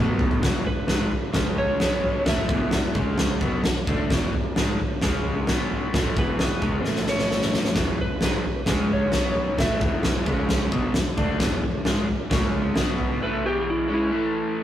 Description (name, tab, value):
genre	garage rock duo or trio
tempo	132 BPM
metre	4/4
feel	straight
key	E major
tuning	A4 = 442 Hz
part	crunchy overdriven guitar	riff	0.0-14.6 s	E2 to D4	-26 LUFS	equal	none
part	fuzz fingered electric bass	bass	0.0-13.2 s	E1 to D2	-34 LUFS	equal	none
part	oversized low-tuned drum kit	drums	0.2-13.1 s	kick drum, snare drum, toms	-23 LUFS	equal	none
part	electric slide guitar	melody	0.7-3.2, 6.2-10.5, 13.2-14.6 s	E4 to E5	-28 LUFS	equal	none
room	moderate studio reverb, RT60 0.5 s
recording	rough rehearsal-room recording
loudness	-21 LUFS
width	side -11 dB against mid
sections	0.4-14.6 A section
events	drum fill 0.0-0.4, 6.9-7.8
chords	0.4 E; 1.4 C#5; 1.8 B5; 2.3 E5; 3.0 C#5; 3.4 E; 5.0 C#5; 5.5 B5; 5.9 E; 6.9 A5; 7.8 E; 8.7 C#5; 9.1 B5; 9.6 E5; 10.3 C#5; 10.7 E; 12.3 C#5; 12.8 B5; 13.2 E; 14.1 A5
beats	| 0.44 0.90 1.35 1.81 | 2.27 2.73 3.19 3.65 | 4.11 4.57 5.03 5.48 | 5.94 6.40 6.86 7.31 | 7.77 8.22 8.68 9.13 | 9.59 10.04 10.50 10.95 | 11.40 11.86 12.31 12.77 | 13.22 13.67 14.12 14.57